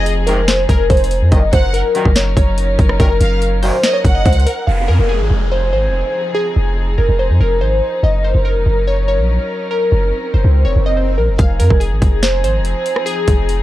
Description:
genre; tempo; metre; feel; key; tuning
hip hop, trap; 143 BPM; 4/4; half-time; F phrygian; A4 = 440 Hz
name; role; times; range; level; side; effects
glassy digital keys; melody; 0.0-13.6 s; Ab4 to F5; -18 LUFS; equal; chorus, tape echo
warm studio violin section; second line; 0.0-4.6 s; Eb5 to Gb5; -25 LUFS; right 1 dB; tape echo
warm symphonic string section; sustained chords; 0.0-13.6 s; F3 to Bb4; -25 LUFS; left 2 dB; none
long sustained 808-style bass; bass; 0.0-13.6 s; F1 to F2; -14 LUFS; equal; none
trap drum kit; drums; 0.1-4.6, 11.4-13.6 s; hi-hat, kick drum, rim click, snare drum; -15 LUFS; equal; overdrive
clear brass ensemble; stabs; 0.3-3.8 s; Gb2 to Eb3; -22 LUFS; equal; none
downlifter and swell; sound effects; 4.7-11.4 s; none; -28 LUFS; equal; none
room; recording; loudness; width
little or no reverb; dry, gritty hardware recording, cassette tape; -12 LUFS; side -15 dB against mid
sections
0.0-4.7 A section; 4.7-11.4 B section; 11.4-13.6 C section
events
swell 9.9-11.4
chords
0.0 Fm7; 1.3 Gb6; 4.7 Fm7; 8.0 Gb6; 11.4 Fm7

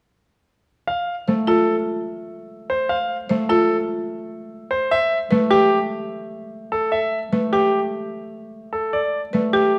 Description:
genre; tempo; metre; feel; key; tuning
classical, minimalist pattern music; 149 BPM; 5/4; straight; unclear; A4 = 440 Hz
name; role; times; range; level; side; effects
bright concert grand piano; melody; 0.9-9.8 s; G4 to F5; -23 LUFS; equal; none
concert harp; accompaniment; 1.3-9.8 s; A3; -27 LUFS; equal; none
buzzing marimba with medium hard mallets; arpeggios; 1.3-9.8 s; F4 to C5; -24 LUFS; equal; none
room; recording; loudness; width
moderate scoring stage reverb, RT60 1.5 s; close, detailed microphones; -21 LUFS; mono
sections
0.9-9.8 A section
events
none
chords
0.9 Am; 4.9 Gadd9

